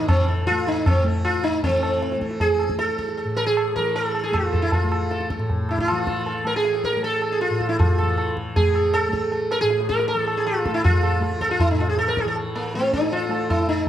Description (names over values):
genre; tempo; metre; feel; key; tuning
indian classical, Hindustani; 157 BPM; 4/4; straight; A raga todi; A4 = 440 Hz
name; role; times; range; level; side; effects
sitar; melody; 0.0-13.9 s; Bb3 to Bb4; -22 LUFS; right 1 dB; none
tanpura; drone; 0.0-13.9 s; A2 to A3; -29 LUFS; left 1 dB; none
tabla; percussion; 0.1-13.8 s; none; -24 LUFS; equal; none
room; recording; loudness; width
moderate recital hall reverb, RT60 1.6 s; none; -19 LUFS; side -11 dB against mid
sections
0.0-1.6 A section; 1.6-13.9 B section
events
none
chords
none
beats
| 0.08 0.47 0.85 1.24 | 1.63 2.02 2.40 2.79 | 3.18 3.56 3.95 4.34 | 4.72 5.11 5.49 5.88 | 6.26 6.64 7.03 7.41 | 7.79 8.17 8.56 8.94 | 9.32 9.70 10.08 10.46 | 10.84 11.22 11.60 11.98 | 12.36 12.74 13.12 13.49 | 13.87